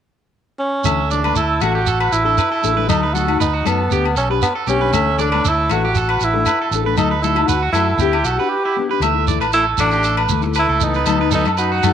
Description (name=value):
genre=highlife guitar band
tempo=118 BPM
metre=4/4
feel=straight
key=D major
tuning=A4 = 440 Hz
part: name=breathy tenor saxophone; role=melody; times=0.6-11.9 s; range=B3 to G4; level=-19 LUFS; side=right 1 dB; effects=none
part: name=nylon-string guitar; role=accompaniment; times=0.8-11.9 s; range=E3 to A4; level=-22 LUFS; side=left 10 dB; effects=none
part: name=fingered electric bass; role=bass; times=0.8-11.9 s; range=A1 to F#2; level=-21 LUFS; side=equal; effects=none
part: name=shekere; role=percussion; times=0.8-11.9 s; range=none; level=-23 LUFS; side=right 5 dB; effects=none
part: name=electric guitar at the edge of break-up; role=arpeggios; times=0.9-11.9 s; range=E4 to E5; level=-22 LUFS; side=right 9 dB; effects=none
part: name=agogo bells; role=percussion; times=0.9-11.9 s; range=none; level=-24 LUFS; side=left 9 dB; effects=none
part: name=brilliant trumpet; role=second line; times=9.5-11.9 s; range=A3 to D#4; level=-27 LUFS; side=left 8 dB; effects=none
room=wet spring reverb, RT60 2.0 s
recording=1960s-style stereo with parts hard left and right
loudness=-15 LUFS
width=side -9 dB against mid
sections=0.8-9.0 A section; 9.0-11.9 B section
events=break 8.5-9.0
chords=0.0 N.C.; 0.8 Dsus2; 2.9 B7/D; 3.9 Bm9; 4.9 Dsus2; 7.0 B7/D; 8.0 Em; 9.0 Dsus2; 11.1 B7/D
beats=0.34 | 0.85 1.36 1.87 2.38 | 2.89 3.40 3.91 4.42 | 4.93 5.44 5.95 6.46 | 6.97 7.49 8.00 8.51 | 9.02 9.53 10.04 10.55 | 11.06 11.57